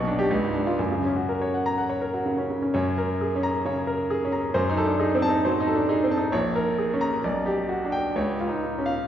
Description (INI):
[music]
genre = classical, virtuoso piano study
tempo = 120-136 BPM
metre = 4/4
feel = rubato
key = F# major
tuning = A4 = 440 Hz
[part]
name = clear grand piano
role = solo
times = 0.0-9.1 s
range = A#1 to A#5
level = -22 LUFS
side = equal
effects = none
[sound]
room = wet scoring stage reverb, RT60 2.1 s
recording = heard from further back in the room, nothing above 7.7 kHz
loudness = -22 LUFS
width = side -10 dB against mid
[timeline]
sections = 0.0-2.7 A section; 2.7-9.1 A section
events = none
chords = 0.3 C#; 0.8 F#; 4.5 F#dim7; 6.3 A#m7; 7.2 G/B; 8.2 C#